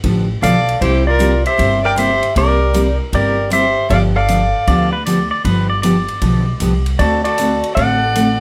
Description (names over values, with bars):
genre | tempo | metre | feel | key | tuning
country, western swing | 155 BPM | 4/4 | swing 66% on 8ths | unclear | A4 = 442 Hz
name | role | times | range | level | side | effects
picked steel-string acoustic guitar | accompaniment | 0.0-8.3 s | C3 to A4 | -21 LUFS | equal | none
upright bass | bass | 0.0-8.4 s | G1 to D2 | -21 LUFS | equal | none
swinging big-band drum kit | drums | 0.0-8.3 s | hi-hat, kick drum, ride cymbal | -28 LUFS | equal | none
clean lap steel guitar | melody | 0.4-8.4 s | E4 to G5 | -18 LUFS | equal | none
clear fiddle | second line | 0.4-8.4 s | G4 to D5+21c | -24 LUFS | equal | none
pedal steel guitar | second line | 4.7-6.9 s | B4 to D5 | -24 LUFS | equal | none
room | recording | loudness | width
light reverb | none | -15 LUFS | mono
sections
0.0-8.4 A section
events
none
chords
0.0 G9; 0.8 C9; 3.9 G9; 7.0 D7